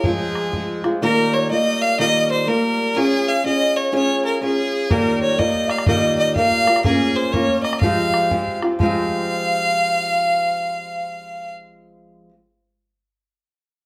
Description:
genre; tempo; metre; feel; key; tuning
celtic folk, Celtic polka; 123 BPM; 2/4; swing 64% on 8ths; F minor; A4 = 435 Hz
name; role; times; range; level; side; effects
clear fiddle; melody; 0.0-11.5 s; Ab4 to F5; -23 LUFS; equal; none
mellow baroque flute; second line; 0.0-11.5 s; Ab4 to F5; -27 LUFS; equal; none
fingerpicked steel-string acoustic guitar; accompaniment; 0.0-12.4 s; Eb3 to Db5; -23 LUFS; equal; none
bodhran; percussion; 0.0-0.9, 4.9-9.1 s; none; -26 LUFS; equal; none
room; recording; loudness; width
moderate large studio reverb, RT60 0.9 s; band playing live in one room; -19 LUFS; mono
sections
0.0-1.0 A section; 1.0-8.8 B section; 8.8-10.7 C section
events
none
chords
0.0 Fm; 1.0 Ebadd9; 3.0 Db; 4.9 Ebadd9; 6.9 Bbm; 7.8 Fmadd9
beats
| 0.04 0.53 | 1.02 1.50 | 1.99 2.48 | 2.96 3.45 | 3.94 4.42 | 4.91 5.39 | 5.88 6.37 | 6.85 7.34 | 7.83 8.31 | 8.80 9.29 | 9.78 10.26

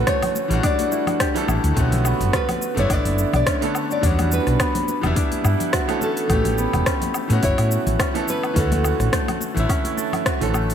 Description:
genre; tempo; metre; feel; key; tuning
sunset chillout; 106 BPM; 4/4; swing 55% on 16ths; B minor; A4 = 440 Hz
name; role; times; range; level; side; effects
nylon-string guitar; melody; 0.0-9.7 s; A4 to D5; -26 LUFS; left 1 dB; digital delay
bright grand piano; accompaniment; 0.0-10.7 s; D3 to D5; -25 LUFS; moving between left 1 dB and right 7 dB; auto-pan, ping-pong delay
concert harp; arpeggios; 0.0-10.7 s; A3 to A4; -27 LUFS; left 3 dB; ping-pong delay
woody fretless electric bass; bass; 0.0-10.7 s; E1 to A2; -20 LUFS; equal; none
deep house drum kit; drums; 0.1-10.7 s; hi-hat, rim click, shaker, woodblock; -26 LUFS; left 1 dB; none
electronic kick drum; drums; 0.1-10.4 s; none; -24 LUFS; equal; none
congas; percussion; 0.2-10.7 s; none; -31 LUFS; left 3 dB; none
room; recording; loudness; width
light reverb, studio ambience; bright 1980s-style digital production; -18 LUFS; side -8 dB against mid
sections
0.0-1.8 A section; 1.8-10.7 A section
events
none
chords
0.0 Dmaj9; 0.6 A7sus4; 1.8 Bm9; 4.0 Em9; 6.0 A9; 8.6 Dmaj9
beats
0.07 0.64 1.20 | 1.77 2.33 2.90 3.47 | 4.03 4.60 5.16 5.73 | 6.30 6.86 7.43 7.99 | 8.56 9.13 9.69 10.26

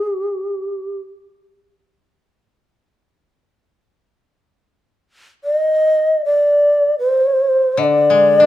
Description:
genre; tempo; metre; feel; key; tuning
japanese traditional, Japanese chamber music; free time; none; none; unclear; A4 = 440 Hz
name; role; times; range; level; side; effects
mellow long shakuhachi; melody; 0.0-8.5 s; G4 to Eb5; -13 LUFS; equal; none
koto; accompaniment; 7.8-8.5 s; D3 to D4; -18 LUFS; left 6 dB; none
room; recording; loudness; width
moderate recital hall reverb, RT60 1.4 s; minimal, uncompressed stereo recording; -13 LUFS; side -13 dB against mid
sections
0.0-8.5 A section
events
none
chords
none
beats
free time

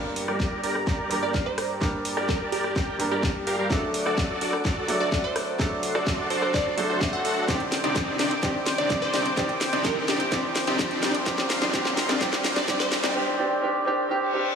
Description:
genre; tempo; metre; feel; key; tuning
EDM, festival progressive house; 127 BPM; 4/4; straight; G minor; A4 = 440 Hz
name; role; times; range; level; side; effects
warm concert grand piano; accompaniment; 0.0-14.6 s; G2 to D5; -29 LUFS; right 2 dB; sidechain pumping, tape echo
lush unison pad; sustained chords; 0.0-13.1 s; G4 to D6; -33 LUFS; left 1 dB; chorus, sidechain pumping
dense compressed supersaw; riff; 0.0-13.1 s; C4 to G5; -28 LUFS; equal; sidechain pumping, low-pass filter, tape echo
fat analog bass; bass; 0.0-13.1 s; G1 to G2; -37 LUFS; left 1 dB; none
riser and reverse cymbal; sound effects; 0.0-14.6 s; none; -37 LUFS; equal; none
house drum kit; drums; 0.2-13.1 s; hi-hat, rim click, snare drum; -29 LUFS; equal; small room ambience
electronic kick drum; drums; 0.4-12.8 s; none; -29 LUFS; equal; small room ambience
glassy wavetable pluck; melody; 1.2-12.9 s; G4 to F#5; -32 LUFS; right 1 dB; chorus, tape echo
room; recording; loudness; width
wet lush hall reverb, RT60 2.0 s, digital ambience; high-pass filter, small room ambience; -22 LUFS; side -6 dB against mid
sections
0.0-14.6 A section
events
build-up 0.0-14.6; drum fill 0.0-13.2; reverse cymbal 14.2-14.6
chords
0.0 Gm; 3.7 D; 7.5 Cmadd9; 11.3 Bbsus2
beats
0.40 0.87 1.34 | 1.82 2.29 2.76 3.23 | 3.71 4.18 4.65 5.12 | 5.60 6.07 6.54 7.01 | 7.49 7.96 8.43 8.90 | 9.38 9.85 10.32 10.79 | 11.27 11.74 12.21 12.68 | 13.15 13.63 14.10

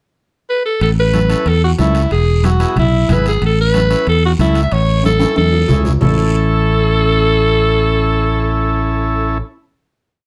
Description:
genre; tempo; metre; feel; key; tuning
latin, cumbia; 185 BPM; 4/4; straight; A major; A4 = 439 Hz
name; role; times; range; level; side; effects
raspy alto saxophone; melody; 0.5-9.4 s; E4 to E5; -19 LUFS; equal; none
fingered electric bass; bass; 0.8-9.4 s; E1 to E2; -17 LUFS; equal; none
guiro; percussion; 0.8-6.1 s; none; -36 LUFS; equal; none
timbales; percussion; 0.8-6.1 s; none; -27 LUFS; equal; none
combo organ; accompaniment; 1.1-9.4 s; B3 to B4; -22 LUFS; equal; none
congas; percussion; 1.1-6.1 s; none; -21 LUFS; equal; none
room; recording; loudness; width
light reverb; dark, warm production; -14 LUFS; mono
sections
0.0-0.8 pickup bar; 0.8-6.0 A section; 6.0-8.6 final chord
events
drum fill 5.0-6.0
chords
0.0 N.C.; 0.8 A; 2.1 E; 3.4 A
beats
0.17 0.49 | 0.82 1.15 1.47 1.80 | 2.12 2.45 2.77 3.10 | 3.42 3.75 4.07 4.40 | 4.72 5.05 5.37 5.70 | 6.02 6.35 6.67 7.00 | 7.32 7.64 7.97 8.30

